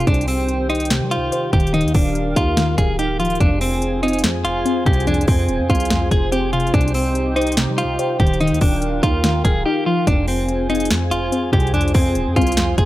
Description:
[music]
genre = hip hop, trap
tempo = 144 BPM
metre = 4/4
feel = half-time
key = F dorian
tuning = A4 = 440 Hz
[part]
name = clean electric guitar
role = melody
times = 0.0-12.9 s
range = C4 to Ab4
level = -21 LUFS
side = equal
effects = harmonic tremolo
[part]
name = soft round pluck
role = accompaniment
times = 0.0-12.9 s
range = F2 to C5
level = -22 LUFS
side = left 1 dB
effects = chorus
[part]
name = dark analog pad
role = sustained chords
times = 0.0-12.9 s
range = Eb3 to Ab5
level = -26 LUFS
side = right 1 dB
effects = chorus
[part]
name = hard-hitting 808-style bass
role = bass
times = 0.0-12.9 s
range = D1 to G3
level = -23 LUFS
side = equal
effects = none
[part]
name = trap drum kit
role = drums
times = 0.0-12.9 s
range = hi-hat, kick drum, snare drum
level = -19 LUFS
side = equal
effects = none
[sound]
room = little or no reverb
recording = dry, gritty hardware recording, transformer saturation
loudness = -16 LUFS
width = side -15 dB against mid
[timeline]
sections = 0.0-3.4 A section; 3.4-12.9 B section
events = silent gap 9.7-10.1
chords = 0.1 Cm; 1.7 Ebadd9; 3.4 Fm; 6.7 Cm; 8.4 Ebadd9; 10.1 Fm

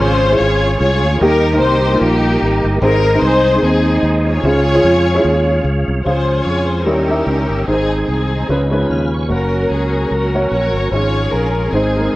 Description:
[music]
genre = gospel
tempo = 148 BPM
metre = 4/4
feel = swing 56% on 8ths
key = Db major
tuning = A4 = 440 Hz
[part]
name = warm symphonic string section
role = melody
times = 0.0-12.2 s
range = Bb3 to Db5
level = -17 LUFS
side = left 1 dB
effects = none
[part]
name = warm upright piano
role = accompaniment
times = 0.0-12.2 s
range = Ab2 to F5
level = -17 LUFS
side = equal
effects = none
[part]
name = tonewheel organ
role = sustained chords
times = 0.0-12.2 s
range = Db3 to Ab5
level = -21 LUFS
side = right 1 dB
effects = fast rotary speaker, chorus vibrato
[part]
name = fingered electric bass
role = bass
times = 0.0-12.2 s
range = Gb1 to F2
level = -18 LUFS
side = equal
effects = none
[sound]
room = light reverb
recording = worn, warbling old tape, cassette tape, warbly pitch drift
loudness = -12 LUFS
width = side -17 dB against mid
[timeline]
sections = 0.0-6.1 A section; 6.1-12.2 B section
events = tonewheel organ fill 8.5-9.3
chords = 0.0 Db; 1.2 Eb; 2.8 Ab; 4.4 Db; 6.9 Eb7b9; 7.7 Ab; 8.5 Db7; 9.3 Gb; 10.9 Db/Ab

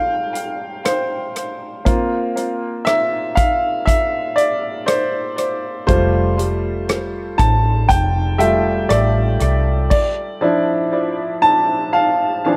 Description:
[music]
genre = pop ballad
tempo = 60 BPM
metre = 4/4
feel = straight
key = F major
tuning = A4 = 440 Hz
[part]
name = bright upright piano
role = accompaniment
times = 0.0-12.6 s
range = E3 to A5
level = -19 LUFS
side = equal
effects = tape echo
[part]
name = natural country drum kit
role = drums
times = 0.4-10.1 s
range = crash cymbal, hi-hat, kick drum, rim click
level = -22 LUFS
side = equal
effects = tape echo
[part]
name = vintage muted fingered electric bass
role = bass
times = 5.9-9.9 s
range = F1 to C2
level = -21 LUFS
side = equal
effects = none
[sound]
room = light reverb, small room ambience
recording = echo-heavy mix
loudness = -18 LUFS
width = mono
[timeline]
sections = 0.0-12.6 A section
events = upright piano solo 0.0-12.6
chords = 0.0 Fadd9; 1.9 Bbsus2; 5.9 Fadd9; 9.9 Dmadd9

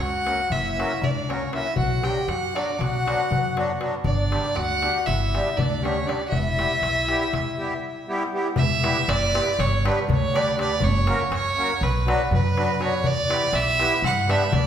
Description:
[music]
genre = balkan folk, Balkan wedding band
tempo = 240 BPM (eighths)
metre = 9/8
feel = straight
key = E dorian sharp4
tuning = A4 = 439 Hz
[part]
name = clear fiddle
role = melody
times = 0.0-14.7 s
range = B4 to G5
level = -25 LUFS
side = right 2 dB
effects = none
[part]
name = trumpet with bucket mute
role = second line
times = 0.0-8.1 s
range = C#4 to G4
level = -30 LUFS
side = left 4 dB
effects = none
[part]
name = upright bass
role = bass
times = 0.0-14.7 s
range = E1 to G2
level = -26 LUFS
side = right 1 dB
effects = none
[part]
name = accordion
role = accompaniment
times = 0.2-14.4 s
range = F#3 to B4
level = -28 LUFS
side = equal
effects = light tremolo tuning
[part]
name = darbuka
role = percussion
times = 0.3-14.6 s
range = none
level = -28 LUFS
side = left 4 dB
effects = none
[sound]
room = wet recital hall reverb, RT60 1.6 s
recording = recorded in a church or concert hall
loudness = -20 LUFS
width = side -9 dB against mid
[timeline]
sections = 0.0-8.6 A section; 8.6-14.7 B section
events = break 7.4-8.6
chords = 0.0 F#; 1.8 Bm; 4.0 G; 6.3 Em; 9.6 G; 10.8 F#; 11.8 Bm; 13.0 Em; 14.0 G

